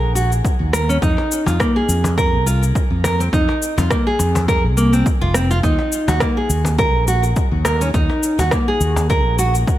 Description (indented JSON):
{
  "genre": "organic downtempo",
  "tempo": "104 BPM",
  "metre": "4/4",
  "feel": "swing 55% on 16ths",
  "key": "Eb dorian",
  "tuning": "A4 = 439 Hz",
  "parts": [
    { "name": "nylon-string guitar", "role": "arpeggios", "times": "0.0-9.5 s", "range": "Bb3 to Bb4", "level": "-19 LUFS", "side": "right 1 dB", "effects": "ping-pong delay, shimmer reverb" },
    { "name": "fretless electric bass", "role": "bass", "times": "0.0-9.6 s", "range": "F1 to F2", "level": "-18 LUFS", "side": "equal", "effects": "ensemble chorus, sidechain pumping" },
    { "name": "electronic cabasa and rim click", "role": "drums", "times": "0.2-9.8 s", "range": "none", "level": "-24 LUFS", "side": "left 1 dB", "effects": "overdrive, studio reverb" },
    { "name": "electronic kick drum", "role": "drums", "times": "0.4-9.8 s", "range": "none", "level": "-20 LUFS", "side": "equal", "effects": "overdrive, studio reverb" },
    { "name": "cajon", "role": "percussion", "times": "1.2-9.1 s", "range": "none", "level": "-26 LUFS", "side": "left 2 dB", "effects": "none" }
  ],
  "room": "moderate recital hall reverb, RT60 1.5 s, small room reverb",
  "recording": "none",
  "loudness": "-14 LUFS",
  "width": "side -14 dB against mid",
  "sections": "0.0-9.8 A section",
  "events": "none",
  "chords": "0.0 Ebm; 1.0 Fm7; 5.6 Ebm"
}